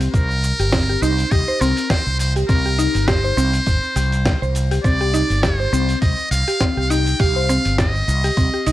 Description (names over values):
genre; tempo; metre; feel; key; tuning
organic downtempo; 102 BPM; 4/4; swing 56% on 16ths; C minor; A4 = 441 Hz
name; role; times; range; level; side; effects
mellow fretless electric bass; bass; 0.0-8.7 s; G1 to C2; -20 LUFS; equal; sidechain pumping
dusty soul sampler-style drum kit; drums; 0.0-8.7 s; cabasa, hi-hat, snare drum; -26 LUFS; equal; studio reverb
trumpet with metal mute; melody; 0.1-8.7 s; Bb4 to G5; -22 LUFS; equal; ping-pong delay
electronic kick drum; drums; 0.1-8.5 s; none; -20 LUFS; equal; studio reverb
mallet-like synth pluck; arpeggios; 0.6-8.7 s; G3 to C5; -22 LUFS; equal; chorus, tape echo
room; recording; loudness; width
little or no reverb; worn, warbling old tape, cassette tape, warbly pitch drift; -16 LUFS; side -15 dB against mid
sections
0.0-8.7 A section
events
none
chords
0.0 Cm7